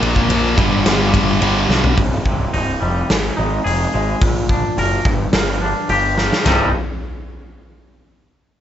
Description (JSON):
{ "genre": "quiet-loud alternative rock", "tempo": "107 BPM", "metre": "4/4", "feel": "straight", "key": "C minor", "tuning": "A4 = 440 Hz", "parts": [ { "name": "high-gain distorted guitar", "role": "riff", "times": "0.0-2.0 s", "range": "G2 to Bb3", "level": "-16 LUFS", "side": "equal", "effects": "distortion" }, { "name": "fuzz picked electric bass", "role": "bass", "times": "0.0-6.7 s", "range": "C1 to B1", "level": "-20 LUFS", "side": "equal", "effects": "overdrive" }, { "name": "huge arena drum kit", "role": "drums", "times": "0.0-6.6 s", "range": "hi-hat, kick drum, ride cymbal, snare drum, toms", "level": "-19 LUFS", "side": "equal", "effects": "none" }, { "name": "twangy electric guitar", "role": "arpeggios", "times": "2.0-6.7 s", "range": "C2 to Bb4", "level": "-20 LUFS", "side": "left 1 dB", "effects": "none" } ], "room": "light reverb", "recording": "nothing above 7.8 kHz", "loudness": "-14 LUFS", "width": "side -10 dB against mid", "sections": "0.0-2.0 A section; 2.0-6.5 B section; 6.5-8.6 C section", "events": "drum fill 1.7, 6.2", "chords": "0.0 Bb5; 0.6 G5; 2.0 Cm; 3.1 Ab5; 4.2 Bb; 5.1 Gm; 6.5 Cm" }